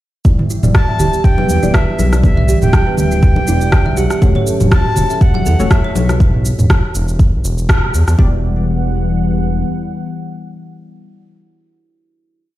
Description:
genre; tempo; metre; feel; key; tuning
afro house; 121 BPM; 4/4; swing 55% on 16ths; E dorian; A4 = 440 Hz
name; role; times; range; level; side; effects
warm analog pad; sustained chords; 0.2-11.3 s; E3 to F#5; -22 LUFS; left 2 dB; chorus, sidechain pumping
kalimba; arpeggios; 0.2-8.4 s; D4 to F#5; -23 LUFS; right 3 dB; sidechain pumping, low-pass filter, ping-pong delay
smooth gliding synth bass; bass; 0.2-9.6 s; D1 to E2; -16 LUFS; equal; sidechain pumping
electronic kick drum; drums; 0.2-8.3 s; none; -12 LUFS; equal; none
deep mellow chord stab; stabs; 0.3-11.3 s; A3 to D5; -25 LUFS; left 2 dB; chorus, sidechain pumping, ping-pong delay
afro-pop drum kit; drums; 0.3-8.2 s; rim click, shaker, toms; -19 LUFS; right 1 dB; none
congas; percussion; 0.4-6.2 s; none; -21 LUFS; left 2 dB; none
breathy bright jazz flute; melody; 0.7-6.2 s; E5 to A5; -22 LUFS; equal; ping-pong delay
room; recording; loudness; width
light reverb; played on a big sound system in a bare room, stone room reverb; -11 LUFS; side -15 dB against mid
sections
0.3-8.2 groove; 8.2-12.2 final chord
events
filter sweep on kalimba 0.3-6.2; filter sweep on synth stab 0.3-6.2; band accent 7.7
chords
0.3 Em7; 4.2 F#m/E; 8.2 Em7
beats
| 0.25 0.75 1.25 1.74 | 2.24 2.73 3.23 3.73 | 4.22 4.72 5.21 5.71 | 6.20 6.70 7.20 7.69 | 8.19 8.68 9.18 9.68 | 10.17 10.67 11.16

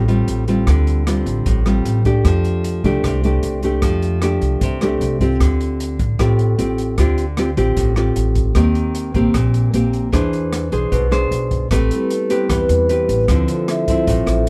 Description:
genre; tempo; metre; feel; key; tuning
bossa nova; 152 BPM; 4/4; straight; unclear; A4 = 439 Hz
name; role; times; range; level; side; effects
nylon-string guitar; accompaniment; 0.0-14.5 s; A2 to C5; -21 LUFS; equal; none
upright bass; bass; 0.0-14.5 s; A1 to F2; -21 LUFS; equal; none
open jazz drum kit; drums; 0.1-14.5 s; hi-hat, kick drum, rim click; -25 LUFS; equal; none
vibraphone with soft mallets; accompaniment; 11.9-14.5 s; G3 to E5; -23 LUFS; equal; none
room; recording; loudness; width
little or no reverb; close, detailed microphones; -17 LUFS; mono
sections
0.0-11.7 A section; 11.7-14.5 B section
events
vibraphone solo 11.7-14.5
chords
0.0 Dm7; 2.2 F69; 5.4 Dm7; 8.6 Eb6; 10.1 E7b13; 11.7 Am9; 13.3 Dm9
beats
0.27 | 0.67 1.06 1.46 1.85 | 2.25 2.64 3.03 3.43 | 3.82 4.22 4.61 5.00 | 5.40 5.79 6.19 6.58 | 6.97 7.37 7.76 8.16 | 8.55 8.95 9.34 9.73 | 10.13 10.52 10.92 11.31 | 11.71 12.10 12.49 12.89 | 13.28 13.68 14.07 14.47

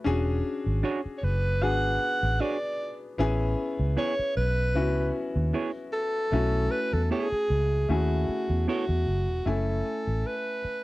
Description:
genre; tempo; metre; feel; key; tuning
soul; 76 BPM; 4/4; swing 54% on 16ths; F# minor; A4 = 440 Hz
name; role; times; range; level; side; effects
clear grand piano; accompaniment; 0.0-10.8 s; A3 to G#5; -31 LUFS; left 3 dB; none
vintage muted fingered electric bass; bass; 0.1-10.7 s; E1 to E2; -26 LUFS; equal; none
semi-hollow electric guitar; riff; 0.8-8.8 s; B3 to C#5; -28 LUFS; right 4 dB; harmonic tremolo
breathy alto saxophone; melody; 1.2-10.8 s; F#4 to F#5; -29 LUFS; right 1 dB; slapback echo
room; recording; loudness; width
little or no reverb; dry, close 1970s-style studio recording; -25 LUFS; side -18 dB against mid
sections
0.0-9.5 A section; 9.5-10.8 B section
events
none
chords
0.1 E13 (rootless); 3.2 Amaj9 (rootless); 6.3 B9sus4; 9.5 F#m7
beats
| 0.05 0.84 1.62 2.40 | 3.19 3.97 4.76 5.54 | 6.33 7.11 7.89 8.68 | 9.46 10.25

